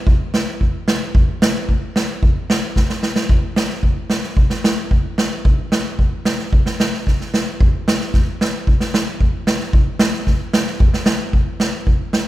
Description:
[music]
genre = klezmer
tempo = 112 BPM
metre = 2/4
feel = straight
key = none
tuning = none
[part]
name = street-band drum kit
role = drums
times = 0.1-12.3 s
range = kick drum, snare drum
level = -15 LUFS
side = equal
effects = none
[sound]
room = little or no reverb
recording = none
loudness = -15 LUFS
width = side -15 dB against mid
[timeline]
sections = 0.0-3.3 A section; 3.3-11.9 B section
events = drum fill 2.8-3.3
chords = none

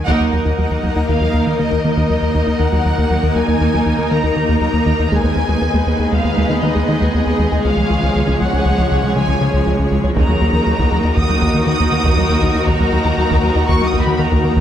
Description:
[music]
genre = cinematic, hybrid orchestral and electronic film score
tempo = 119 BPM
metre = 5/4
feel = straight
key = Eb minor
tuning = A4 = 440 Hz
[part]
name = warm symphonic violin section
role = melody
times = 0.0-14.6 s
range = Eb5 to Eb6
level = -23 LUFS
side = left 1 dB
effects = none
[part]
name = granular cloud pad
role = sustained chords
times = 0.0-14.6 s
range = Eb3 to Eb5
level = -23 LUFS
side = left 1 dB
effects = built-in reverb
[part]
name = soft round pluck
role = arpeggios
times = 0.0-14.6 s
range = Db3 to Ab4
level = -24 LUFS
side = right 3 dB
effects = chorus
[part]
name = rubbery square bass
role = riff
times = 0.0-14.6 s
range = Db2 to Eb3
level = -18 LUFS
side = left 1 dB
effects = none
[part]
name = rich symphonic violin section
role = second line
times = 0.1-14.6 s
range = Eb4 to Db5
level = -25 LUFS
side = left 2 dB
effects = none
[part]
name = rich symphonic viola section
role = accompaniment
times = 0.1-14.6 s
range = Eb3 to Eb4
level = -24 LUFS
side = right 2 dB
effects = none
[part]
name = mellow French horn section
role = sustained chords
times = 0.1-14.6 s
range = Ab3 to Bb4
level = -25 LUFS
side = left 4 dB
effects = none
[part]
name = rich symphonic cello section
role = bass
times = 0.1-14.6 s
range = Db2 to Eb2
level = -22 LUFS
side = right 1 dB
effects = none
[part]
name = taiko ensemble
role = drums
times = 0.1-1.1, 5.1-6.1, 10.2-14.6 s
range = none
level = -22 LUFS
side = equal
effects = none
[sound]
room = moderate scoring stage reverb, RT60 1.6 s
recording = none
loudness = -13 LUFS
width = side -10 dB against mid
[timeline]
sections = 0.1-14.6 A section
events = band accent 0.1-0.6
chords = 0.1 Ebm; 5.1 Abm/Eb; 7.6 Db; 10.2 Ebm

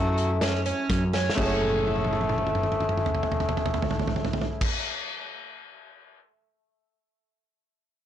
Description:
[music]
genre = progressive instrumental, band music in an uneven meter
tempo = 125 BPM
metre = 7/4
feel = straight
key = F# minor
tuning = A4 = 437 Hz
[part]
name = clear bass clarinet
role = melody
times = 0.0-0.9 s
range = F#3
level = -36 LUFS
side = equal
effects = none
[part]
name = trombone with straight mute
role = second line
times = 0.0-4.7 s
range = A3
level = -30 LUFS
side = left 3 dB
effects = ping-pong delay
[part]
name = clear concert grand piano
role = accompaniment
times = 0.0-4.7 s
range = A3 to G#4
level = -34 LUFS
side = equal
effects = none
[part]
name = picked twelve-string acoustic guitar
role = arpeggios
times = 0.0-4.7 s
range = C#4 to F#5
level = -30 LUFS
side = right 3 dB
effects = ping-pong delay
[part]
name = woody fretless electric bass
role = bass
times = 0.0-4.7 s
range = F#1 to F#2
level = -30 LUFS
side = equal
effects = tube saturation
[part]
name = loose indie drum kit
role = drums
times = 0.2-6.2 s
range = crash cymbal, hi-hat, kick drum, snare drum, toms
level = -28 LUFS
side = equal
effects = none
[sound]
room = light reverb, studio reverb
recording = blown-out, overdriven recording, overdrive, nothing above 10.9 kHz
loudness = -24 LUFS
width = side -10 dB against mid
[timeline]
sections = 0.0-1.4 A section; 1.4-4.7 B section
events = drum fill 1.1, 1.6-4.6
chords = 0.0 F#m7

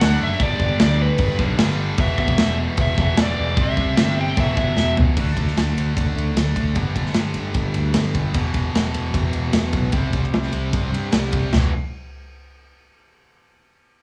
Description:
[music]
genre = hard rock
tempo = 151 BPM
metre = 4/4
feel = straight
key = E minor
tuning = A4 = 443 Hz
[part]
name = bluesy overdriven lead guitar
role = melody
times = 0.0-4.9 s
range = B4 to G5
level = -27 LUFS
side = equal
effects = distortion, cassette tape, plate reverb, tape echo
[part]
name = tight distorted guitar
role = riff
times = 0.0-11.7 s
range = E2 to D4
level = -28 LUFS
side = equal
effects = distortion, cassette tape
[part]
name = fuzz fingered electric bass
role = bass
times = 0.0-11.7 s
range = E1 to G2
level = -25 LUFS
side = equal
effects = overdrive
[part]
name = big rock drum kit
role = drums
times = 0.0-11.6 s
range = crash cymbal, kick drum, ride cymbal, snare drum, splash cymbal, toms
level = -24 LUFS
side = equal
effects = cassette tape
[sound]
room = light reverb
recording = home recording on cassette, small room ambience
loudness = -20 LUFS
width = mono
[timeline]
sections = 0.0-5.2 A section; 5.2-11.5 B section; 11.5-13.1 C section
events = drum fill 4.8-5.2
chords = 0.4 G; 2.0 E5; 3.6 C; 4.4 Em; 5.2 D5; 6.8 G5; 8.4 E5; 9.9 C5; 11.5 E5

